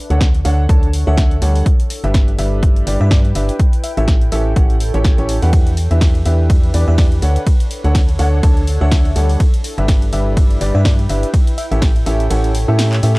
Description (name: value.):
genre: piano house.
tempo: 124 BPM.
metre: 4/4.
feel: swing 56% on 16ths.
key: unclear.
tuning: A4 = 440 Hz.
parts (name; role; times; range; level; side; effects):
warbly tape-like pad; texture; 0.0-13.2 s; D4 to G5; -29 LUFS; equal; chorus, built-in reverb, sidechain pumping.
clear upright piano; riff; 0.1-13.2 s; A2 to A5; -22 LUFS; equal; sidechain pumping.
organ-like FM bass; bass; 0.1-13.2 s; G1 to A2; -15 LUFS; equal; sidechain pumping.
punchy analog drum machine; drums; 0.1-13.2 s; handclaps, hi-hat, ride cymbal, snare drum; -26 LUFS; equal; overdrive.
electronic kick drum; drums; 0.2-11.9 s; none; -13 LUFS; equal; overdrive.
bell-like FM electric piano; melody; 0.4-11.8 s; D5 to F#5; -28 LUFS; equal; chorus, tape echo.
room: digital ambience.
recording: dry, gritty hardware recording, cassette tape.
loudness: -12 LUFS.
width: side -23 dB against mid.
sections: 0.0-13.2 A section.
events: kick drops out 12.3-13.2; drum fill 12.9.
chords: 0.0 Dmaj7; 1.7 G6; 3.6 A7; 5.5 Em7; 7.2 Dmaj7; 9.4 G6; 11.3 A7.